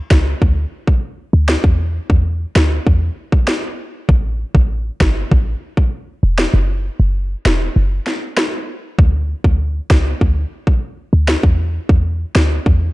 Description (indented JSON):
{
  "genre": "dancehall",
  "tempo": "98 BPM",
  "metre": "4/4",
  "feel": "straight",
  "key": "D major",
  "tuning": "A4 = 440 Hz",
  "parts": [
    { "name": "short 808-style bass", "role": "bass", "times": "0.1-12.9 s", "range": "E1 to E2", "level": "-15 LUFS", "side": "equal", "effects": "none" },
    { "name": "island pop drum kit", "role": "drums", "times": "0.1-12.8 s", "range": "finger snaps, kick drum, rim click, snare drum", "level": "-15 LUFS", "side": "equal", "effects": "overdrive, vintage 12-bit sampler grit" }
  ],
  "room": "little or no reverb",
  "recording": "dark, warm production",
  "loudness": "-14 LUFS",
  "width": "side -20 dB against mid",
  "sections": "0.0-12.9 A section",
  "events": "kick muted 6.5-9.0",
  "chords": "none",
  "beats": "0.41 1.03 | 1.64 2.25 2.86 3.48 | 4.09 4.70 5.31 5.92 | 6.54 7.15 7.76 8.37 | 8.98 9.60 10.21 10.82 | 11.43 12.05 12.66"
}